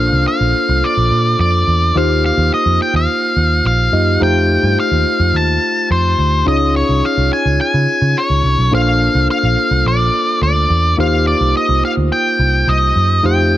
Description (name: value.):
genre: polished 1980s jazz-funk pop.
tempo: 106 BPM.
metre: 4/4.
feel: straight.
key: Bb major.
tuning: A4 = 441 Hz.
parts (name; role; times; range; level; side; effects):
octave-fuzz lead guitar; melody; 0.0-13.6 s; C5 to A5; -16 LUFS; left 1 dB; distortion.
barky tine electric piano; accompaniment; 0.0-13.6 s; A3 to Eb5; -18 LUFS; left 1 dB; wide subtle chorus.
vintage muted picked electric bass; bass; 0.0-13.6 s; Bb1 to Db3; -15 LUFS; right 1 dB; none.
room: light reverb.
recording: none.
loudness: -12 LUFS.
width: side -14 dB against mid.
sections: 0.0-13.6 A section.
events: none.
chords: 0.0 Bbmaj9; 2.0 Eb69; 4.2 F9; 6.5 Dbmaj9; 8.7 Bbmaj9; 11.0 Eb69.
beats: 0.27 0.83 1.39 | 1.95 2.52 3.08 3.65 | 4.21 4.77 5.34 5.90 | 6.46 7.03 7.59 8.16 | 8.72 9.29 9.85 10.42 | 10.98 11.55 12.11 12.68 | 13.24.